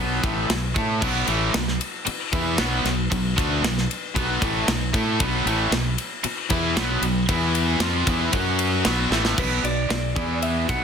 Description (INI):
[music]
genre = hard rock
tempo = 115 BPM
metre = 4/4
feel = straight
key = B minor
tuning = A4 = 440 Hz
[part]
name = cranked stack guitar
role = riff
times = 0.0-10.8 s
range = A2 to A4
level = -27 LUFS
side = left 12 dB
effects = overdrive
[part]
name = cranked stack guitar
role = riff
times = 0.0-10.8 s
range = A2 to A4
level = -27 LUFS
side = right 14 dB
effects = overdrive, spring reverb
[part]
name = modern bright fingered electric bass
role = bass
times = 0.0-10.8 s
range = A1 to A2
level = -26 LUFS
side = equal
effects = none
[part]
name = tight metal drum kit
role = drums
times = 0.2-10.8 s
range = crash cymbal, kick drum, ride cymbal, snare drum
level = -25 LUFS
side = equal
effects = soft clipping on kick
[part]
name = scooped high-gain guitar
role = riff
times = 1.0-9.4 s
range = A2 to A4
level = -28 LUFS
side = right 1 dB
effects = distortion
[part]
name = lightly driven lead guitar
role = melody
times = 9.4-10.8 s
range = B4 to F#5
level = -28 LUFS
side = right 2 dB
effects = none
[sound]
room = light reverb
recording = dense, heavily limited modern master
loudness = -20 LUFS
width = side -7 dB against mid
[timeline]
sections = 0.0-9.4 A section; 9.4-10.8 B section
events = drum fill 9.1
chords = 0.0 Bm; 7.3 E5; 7.8 Cadd11; 8.3 F#5; 8.9 B5; 9.4 Bm; 10.2 E5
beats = 0.49 | 1.01 1.54 2.06 2.58 | 3.11 3.63 4.15 4.67 | 5.20 5.72 6.24 6.76 | 7.29 7.81 8.33 8.85 | 9.38 9.90 10.43